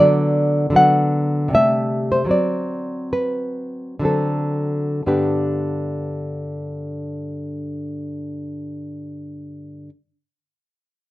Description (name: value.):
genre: classical.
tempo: 55-82 BPM.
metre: 3/4.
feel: rubato.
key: G major.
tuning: A4 = 439 Hz.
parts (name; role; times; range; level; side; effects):
nylon-string guitar; accompaniment; 0.0-9.9 s; G2 to F#5; -19 LUFS; equal; none.
room: light reverb.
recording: rough home demo mix.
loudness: -18 LUFS.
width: side -17 dB against mid.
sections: 0.0-5.1 A section; 5.1-10.9 B section.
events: slowing down 0.0-5.1.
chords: 0.0 Bm/D; 1.5 Am7/C; 2.3 D7; 5.1 G.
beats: 0.75 1.53 | 2.30 3.13 4.05 | 5.07 6.05 7.01 | 7.98 8.98.